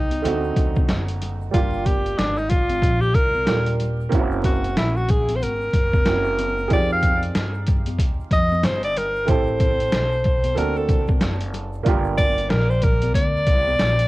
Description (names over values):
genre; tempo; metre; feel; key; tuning
hip hop, jazz-hop; 93 BPM; 4/4; swing 60% on 16ths; unclear; A4 = 441 Hz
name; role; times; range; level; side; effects
breathy alto saxophone; melody; 0.0-14.1 s; D4 to F5; -23 LUFS; equal; cassette tape, analog delay
dark grand piano; accompaniment; 0.0-14.1 s; D3 to Bb4; -28 LUFS; right 6 dB; none
upright bass; bass; 0.0-14.1 s; Eb1 to G2; -25 LUFS; equal; none
trip hop sampler-style drum kit; drums; 0.1-14.1 s; hi-hat, kick drum, snare drum; -21 LUFS; equal; cassette tape
congas and egg shaker; percussion; 0.1-14.1 s; none; -36 LUFS; left 6 dB; none
room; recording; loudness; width
light reverb; home recording on cassette, vinyl crackle; -18 LUFS; side -19 dB against mid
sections
0.0-14.1 A section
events
alto saxophone solo 0.0-14.1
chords
0.3 D7b9; 1.5 Gm7; 4.1 F#7#11; 6.7 Fm9; 9.3 Am9; 10.6 D7b13; 11.9 Gm7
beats
0.25 0.90 | 1.54 2.19 2.83 3.48 | 4.12 4.77 5.42 6.06 | 6.71 7.35 8.00 8.64 | 9.29 9.93 10.58 11.22 | 11.87 12.51 13.16 13.80